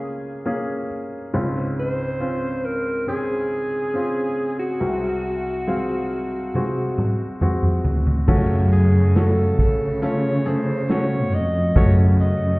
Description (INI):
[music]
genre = pop ballad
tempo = 69 BPM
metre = 4/4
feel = straight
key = unclear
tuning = A4 = 440 Hz
[part]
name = bright alto saxophone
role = melody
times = 0.0-12.6 s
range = Gb4 to Eb5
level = -26 LUFS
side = equal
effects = none
[part]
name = felt-muted upright piano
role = accompaniment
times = 0.0-12.6 s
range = C2 to F5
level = -24 LUFS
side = equal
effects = none
[part]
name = unplugged drum kit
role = drums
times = 6.5-12.4 s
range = crash cymbal, hi-hat, kick drum, snare drum, toms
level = -20 LUFS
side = equal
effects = none
[part]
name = dark symphonic cello section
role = bass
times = 8.3-12.6 s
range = F2 to Db3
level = -18 LUFS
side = equal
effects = none
[sound]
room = light reverb, studio reverb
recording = heard muffled through a wall, stone room reverb, EQ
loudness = -18 LUFS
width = side -24 dB against mid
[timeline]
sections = 0.0-8.3 A section; 8.3-12.6 B section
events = drum fill 6.5-8.3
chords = 0.0 Bbm7/Db; 1.3 Dbmaj7; 4.8 Ab7/C; 8.3 Gbm